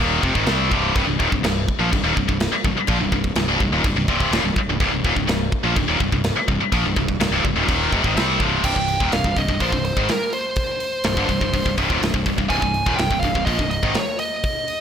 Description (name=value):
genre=heavy metal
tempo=125 BPM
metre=4/4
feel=straight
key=C minor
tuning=A4 = 440 Hz
part: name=heavy high-gain guitar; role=riff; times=0.0-13.9 s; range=C2 to C4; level=-20 LUFS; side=left 1 dB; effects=distortion
part: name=fuzz fingered electric bass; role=bass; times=0.0-13.9 s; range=C1 to C2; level=-26 LUFS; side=equal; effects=overdrive
part: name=tight metal drum kit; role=drums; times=0.2-14.8 s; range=crash cymbal, hi-hat, kick drum, snare drum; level=-23 LUFS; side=equal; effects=none
part: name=high-gain lead guitar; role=melody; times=8.7-14.8 s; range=Bb4 to Ab5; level=-23 LUFS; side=right 2 dB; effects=distortion
room=light reverb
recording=blown-out, overdriven recording, overdrive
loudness=-18 LUFS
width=side -8 dB against mid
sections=0.0-8.6 A section; 8.6-14.8 B section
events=none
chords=0.0 Cm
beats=0.00 0.48 | 0.96 1.44 1.93 2.41 | 2.89 3.37 3.85 4.33 | 4.80 5.29 5.76 6.24 | 6.72 7.20 7.68 8.16 | 8.64 9.12 9.61 10.09 | 10.57 11.05 11.53 12.02 | 12.50 12.98 13.47 13.95 | 14.44